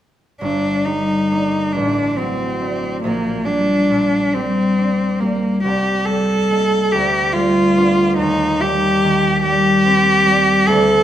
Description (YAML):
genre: classical, romantic duo for cello and harp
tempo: 47 BPM (dotted quarters)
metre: 6/8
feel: rubato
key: G minor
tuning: A4 = 437 Hz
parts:
  - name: rich cello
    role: melody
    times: 0.4-11.0 s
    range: Bb3 to A4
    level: -16 LUFS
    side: equal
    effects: none
  - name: concert harp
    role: accompaniment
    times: 0.4-11.0 s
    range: G1 to Eb4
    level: -18 LUFS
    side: equal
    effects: none
room: wet recital hall reverb, RT60 1.7 s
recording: none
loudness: -14 LUFS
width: side -11 dB against mid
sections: 0.4-11.0 A section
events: none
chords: 0.4 Gm; 1.7 D7/A; 3.0 Gm/Bb; 5.6 Cm7; 6.9 G7/D; 8.2 Cm/Eb